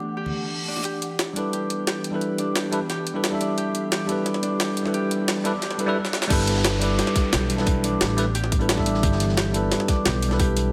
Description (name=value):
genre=liquid drum and bass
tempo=176 BPM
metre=4/4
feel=straight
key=G major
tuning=A4 = 440 Hz
part: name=bright tine electric piano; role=accompaniment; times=0.0-10.7 s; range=E3 to F#5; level=-27 LUFS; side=equal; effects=low-pass filter, digital delay
part: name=glassy FM pad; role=sustained chords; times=0.0-10.7 s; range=E3 to F#5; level=-37 LUFS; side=equal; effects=ensemble chorus, built-in reverb, phaser, sidechain pumping
part: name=Celtic harp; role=arpeggios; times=0.0-10.7 s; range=D4 to G4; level=-34 LUFS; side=equal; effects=low-pass filter, digital delay
part: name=bongos and congas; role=percussion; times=0.0-0.8 s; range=none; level=-38 LUFS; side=equal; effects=none
part: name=reverse cymbal, riser and downlifter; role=sound effects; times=0.3-9.0 s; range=none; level=-37 LUFS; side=equal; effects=none
part: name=jungle sampler-style drum kit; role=drums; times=0.8-10.6 s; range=crash cymbal, hi-hat, snare drum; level=-28 LUFS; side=equal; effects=high-pass filter on hats, studio reverb, high-pass filter on snare, high-pass filter on cymbals
part: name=upright bass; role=bass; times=6.3-10.7 s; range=G1 to B1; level=-28 LUFS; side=equal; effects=none
part: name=crunchy breakbeat drum kit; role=drums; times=6.3-10.6 s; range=hi-hat, snare drum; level=-36 LUFS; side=equal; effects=none
part: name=electronic kick drum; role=drums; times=6.3-10.5 s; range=none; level=-25 LUFS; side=equal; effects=studio reverb
room=moderate lush hall reverb, RT60 2.2 s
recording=none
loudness=-23 LUFS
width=mono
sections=0.8-6.3 A section; 6.3-10.7 B section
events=reverse cymbal 0.3-0.8; build-up 0.8-6.3; filter sweep on tine electric piano 0.8-6.3; drum fill 6.0; drop 6.3-10.7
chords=0.0 Em11; 0.8 G6; 6.1 N.C.; 6.3 G6